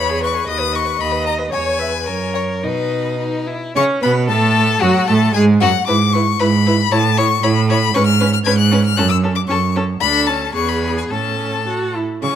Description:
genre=quick classical-period movement for string quartet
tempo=104-118 BPM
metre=2/4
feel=rubato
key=B major, A major from 3.8 s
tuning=A4 = 441 Hz
part: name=clear violin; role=melody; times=0.0-12.4 s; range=B4 to G#6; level=-19 LUFS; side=left 9 dB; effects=none
part: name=rich violin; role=second line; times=0.0-12.0 s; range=D#4 to D#5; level=-22 LUFS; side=left 3 dB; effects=none
part: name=clear viola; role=accompaniment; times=0.0-12.4 s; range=F#3 to E5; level=-21 LUFS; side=right 2 dB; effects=none
part: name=clear cello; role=bass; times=0.0-12.3 s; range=D2 to C#3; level=-18 LUFS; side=right 4 dB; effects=none
room=light reverb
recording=close, detailed microphones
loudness=-14 LUFS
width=side -9 dB against mid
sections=0.0-3.8 A section; 3.8-12.2 B section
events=none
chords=0.5 B/D#; 1.5 C#m/E; 2.1 F#; 2.6 B; 3.8 A; 4.8 F#madd9; 5.9 E/G#; 6.9 A; 7.9 C#5/G#; 9.0 F#m; 10.0 Bm7/D; 10.5 E; 11.1 A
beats=| 0.50 1.01 | 1.54 2.08 | 2.64 3.20 | 3.76 4.29 | 4.82 5.34 | 5.87 6.40 | 6.91 7.43 | 7.94 8.45 | 8.97 9.49 | 10.01 10.54 | 11.11 11.68 | 12.23

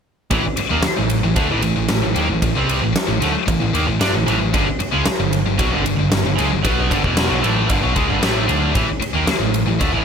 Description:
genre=hard rock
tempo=114 BPM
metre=4/4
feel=straight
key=unclear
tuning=A4 = 440 Hz
part: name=high-gain distorted guitar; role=riff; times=0.3-10.0 s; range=E2 to D4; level=-21 LUFS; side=left 12 dB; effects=distortion
part: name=sludgy distorted guitar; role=riff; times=0.3-10.0 s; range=E2 to D4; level=-22 LUFS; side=right 10 dB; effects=overdrive
part: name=overdriven picked electric bass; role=bass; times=0.3-10.0 s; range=E1 to G2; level=-22 LUFS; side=equal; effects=none
part: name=huge arena drum kit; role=drums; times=0.3-9.9 s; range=kick drum, ride cymbal, snare drum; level=-20 LUFS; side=equal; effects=none
room=little or no reverb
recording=none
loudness=-16 LUFS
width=side -7 dB against mid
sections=0.3-10.0 A section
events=none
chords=0.3 A5; 4.5 G5; 8.8 A5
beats=| 0.31 0.84 1.37 1.89 | 2.42 2.95 3.48 4.00 | 4.53 5.06 5.59 6.12 | 6.64 7.17 7.70 8.23 | 8.76 9.28 9.81

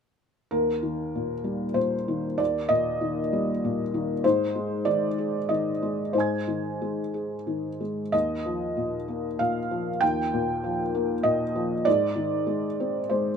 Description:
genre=neoclassical minimalist piano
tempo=96 BPM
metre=3/4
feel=rubato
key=Eb major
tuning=A4 = 441 Hz
part: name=felt-muted upright piano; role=solo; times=0.5-13.4 s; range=Eb2 to Ab6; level=-24 LUFS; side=equal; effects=none
room=light reverb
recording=minimal, uncompressed stereo recording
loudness=-24 LUFS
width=side -6 dB against mid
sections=0.5-13.4 A section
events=none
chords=0.5 Eb; 4.2 Ab; 8.1 Ebadd9; 11.9 Ab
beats=| 0.52 1.15 1.77 | 2.40 3.01 3.63 | 4.24 4.86 5.49 | 6.14 6.81 7.47 | 8.13 8.77 9.39 | 10.01 10.63 11.25 | 11.86 12.48 13.11

